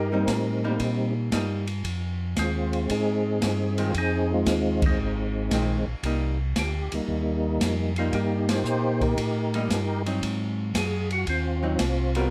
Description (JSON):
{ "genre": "soul jazz organ trio", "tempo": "115 BPM", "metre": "4/4", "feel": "swing 68% on 8ths", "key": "C minor", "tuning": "A4 = 444 Hz", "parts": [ { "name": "percussive tonewheel organ", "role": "melody", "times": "0.0-12.3 s", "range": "G3 to C5", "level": "-29 LUFS", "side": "equal", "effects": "chorus vibrato, slow rotary speaker" }, { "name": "mellow tonewheel organ", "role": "bass", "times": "0.0-12.3 s", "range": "Ab1 to Bb2", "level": "-30 LUFS", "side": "equal", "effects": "slow rotary speaker" }, { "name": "archtop guitar, miked and amplified", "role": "accompaniment", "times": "0.1-12.3 s", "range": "Eb3 to Bb4", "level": "-32 LUFS", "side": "equal", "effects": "none" }, { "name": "open jazz drum kit", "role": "drums", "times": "0.3-12.2 s", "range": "hi-hat, kick drum, ride cymbal, snare drum", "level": "-33 LUFS", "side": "equal", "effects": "none" } ], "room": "light reverb", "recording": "close, detailed microphones", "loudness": "-26 LUFS", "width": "mono", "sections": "0.0-12.3 A section", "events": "band accent 4.7, 8.4", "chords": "0.0 Cm7; 1.9 Fm7; 6.0 Cm7; 10.2 Ab7" }